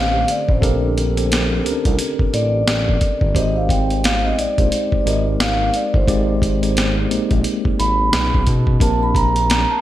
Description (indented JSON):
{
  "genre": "R&B, neo-soul",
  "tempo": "88 BPM",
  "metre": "4/4",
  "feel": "swing 60% on 16ths",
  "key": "Bb major",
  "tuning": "A4 = 443 Hz",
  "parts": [
    { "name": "vibraphone with soft mallets", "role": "melody", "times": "0.0-9.8 s", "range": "C5 to Cb6", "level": "-21 LUFS", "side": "equal", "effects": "none" },
    { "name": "mellow tine electric piano", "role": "accompaniment", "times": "0.0-9.8 s", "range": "A#2 to D5", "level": "-22 LUFS", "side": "equal", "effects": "medium stereo tremolo" },
    { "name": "smooth synth bass", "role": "bass", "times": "0.0-9.7 s", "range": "G1 to B2", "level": "-20 LUFS", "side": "equal", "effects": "none" },
    { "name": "boom bap sampler-style drum kit", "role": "drums", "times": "0.3-9.7 s", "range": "hi-hat, kick drum, snare drum", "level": "-19 LUFS", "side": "equal", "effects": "gated reverb" }
  ],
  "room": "moderate plate reverb, RT60 2.8 s",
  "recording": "bright 1980s-style digital production",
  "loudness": "-15 LUFS",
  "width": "side -13 dB against mid",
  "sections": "0.0-9.8 A section",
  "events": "none",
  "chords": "0.0 Bbmaj13; 3.4 Abmaj7; 8.1 Bmaj13; 8.8 Bbmaj13"
}